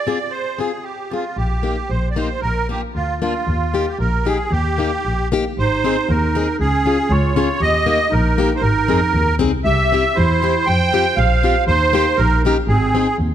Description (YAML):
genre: alpine folk, alpine dance band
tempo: 116 BPM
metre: 2/4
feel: straight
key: Eb major, Ab major from 5.6 s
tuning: A4 = 440 Hz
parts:
  - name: musette accordion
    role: melody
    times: 0.0-13.2 s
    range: F4 to G5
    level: -19 LUFS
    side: right 3 dB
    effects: none
  - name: picked plugged-in steel-string acoustic guitar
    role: accompaniment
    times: 0.1-13.1 s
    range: Bb3 to Ab4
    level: -22 LUFS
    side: left 6 dB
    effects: none
  - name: dark double bass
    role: bass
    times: 1.4-13.3 s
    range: Ab1 to F2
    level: -19 LUFS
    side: equal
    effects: none
  - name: warm clarinet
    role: second line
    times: 5.6-13.2 s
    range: C4 to C5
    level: -24 LUFS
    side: right 3 dB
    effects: none
room: light reverb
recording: close, detailed microphones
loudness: -15 LUFS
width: side -10 dB against mid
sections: 0.0-5.6 A section; 5.6-13.3 B section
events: none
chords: 0.0 Fm; 1.4 Eb/Bb; 2.4 Bb; 3.5 Eb; 5.6 Ab; 6.6 Db; 7.6 Eb; 8.6 Abadd9; 9.6 C; 10.7 Fsus2; 11.7 Eb; 12.7 Ab